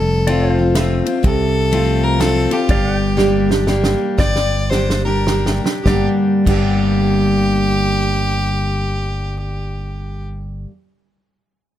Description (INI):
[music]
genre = honky-tonk and classic country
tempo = 99-124 BPM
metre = 3/4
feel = swing 64% on 8ths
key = G minor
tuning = A4 = 441 Hz
[part]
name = clear fiddle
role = melody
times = 0.0-10.2 s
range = G4 to D5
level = -22 LUFS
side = left 1 dB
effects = none
[part]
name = picked steel-string acoustic guitar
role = accompaniment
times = 0.0-10.7 s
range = F2 to G4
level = -18 LUFS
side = left 1 dB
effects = none
[part]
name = fingered electric bass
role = bass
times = 0.0-10.7 s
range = F1 to C2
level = -19 LUFS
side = equal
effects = none
[part]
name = pedal steel guitar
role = sustained chords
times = 0.3-10.1 s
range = C5 to G5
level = -29 LUFS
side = left 1 dB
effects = none
[part]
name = natural country drum kit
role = drums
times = 0.3-6.7 s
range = crash cymbal, kick drum, ride cymbal, snare drum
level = -21 LUFS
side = right 1 dB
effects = none
[sound]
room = light reverb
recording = none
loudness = -14 LUFS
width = side -12 dB against mid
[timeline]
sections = 0.0-4.2 A section; 4.2-5.9 B section; 5.9-9.5 C section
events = slowing down 2.7-5.9; drum fill 3.2-4.2, 4.2-5.9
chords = 0.0 F; 2.7 Gm